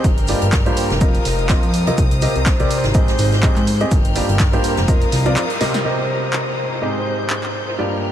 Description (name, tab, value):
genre	piano house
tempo	124 BPM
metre	4/4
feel	swing 56% on 16ths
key	C minor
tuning	A4 = 441 Hz
part	rich chamber violin section	sustained chords	0.0-8.1 s	Bb4 to G6	-25 LUFS	left 2 dB	sidechain pumping, low-pass filter
part	clear concert grand piano	riff	0.0-8.1 s	G2 to Eb5	-21 LUFS	right 1 dB	sidechain pumping, low-pass filter, tape echo
part	fat analog bass	bass	0.0-5.4 s	F1 to Ab2	-19 LUFS	equal	sidechain pumping
part	electronic kick drum	drums	0.0-5.0 s	none	-17 LUFS	equal	none
part	punchy analog drum machine	drums	0.0-7.5 s	handclaps, hi-hat, snare drum	-25 LUFS	equal	none
part	swinging big-band drum kit	drums	0.0-8.1 s	hi-hat, shaker, snare drum	-33 LUFS	right 1 dB	none
room	moderate huge ambient reverb, RT60 8.7 s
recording	dreamy mix soaked in reverb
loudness	-15 LUFS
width	side -10 dB against mid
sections	0.0-5.9 A section; 5.9-8.1 B section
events	break 5.4-5.9; band accent 5.4; drum fill 5.6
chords	0.0 Gm7; 1.0 F7sus4; 2.0 Cm7; 2.9 Abmaj7; 3.9 Gm7; 4.9 F7sus4; 5.9 Cm7; 6.8 Abmaj7